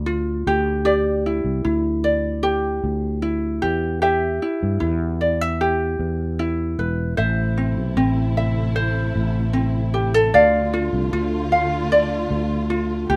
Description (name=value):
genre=acoustic pop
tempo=76 BPM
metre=4/4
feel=straight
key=unclear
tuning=A4 = 441 Hz
part: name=ukulele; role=accompaniment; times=0.0-13.2 s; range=C4 to F5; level=-23 LUFS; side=equal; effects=none
part: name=sustaining fretless electric bass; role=bass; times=0.0-13.2 s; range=E1 to G2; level=-25 LUFS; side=equal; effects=none
part: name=dark studio string section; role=sustained chords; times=7.2-13.2 s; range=C3 to G4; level=-31 LUFS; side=equal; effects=none
room=light reverb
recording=none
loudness=-21 LUFS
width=mono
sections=0.0-13.2 A section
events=none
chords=0.5 G5; 3.6 Em; 7.2 Am; 10.3 Dm